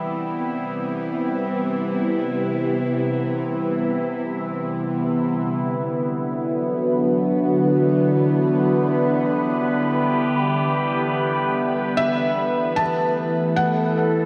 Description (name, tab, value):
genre	ambient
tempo	free time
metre	none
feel	none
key	unclear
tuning	A4 = 439 Hz
part	evolving wavetable pad	sustained chords	0.0-14.3 s	C3 to B4	-23 LUFS	equal	phaser, built-in reverb
part	bowed-like drone	drone	0.0-14.3 s	E3 to B3	-32 LUFS	equal	built-in reverb
part	glass harmonica	texture	0.0-14.3 s	E5 to G5	-37 LUFS	equal	none
part	felt-muted upright piano	melody	12.0-14.3 s	E5 to A5	-26 LUFS	equal	tape echo
room	wet lush hall reverb, RT60 2.5 s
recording	dark, warm production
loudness	-22 LUFS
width	mono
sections	0.0-5.3 A section; 5.3-14.3 B section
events	fade-out on synth drone 5.3-14.3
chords	0.0 Cmaj7; 5.3 Bm; 8.7 G; 11.9 Asus2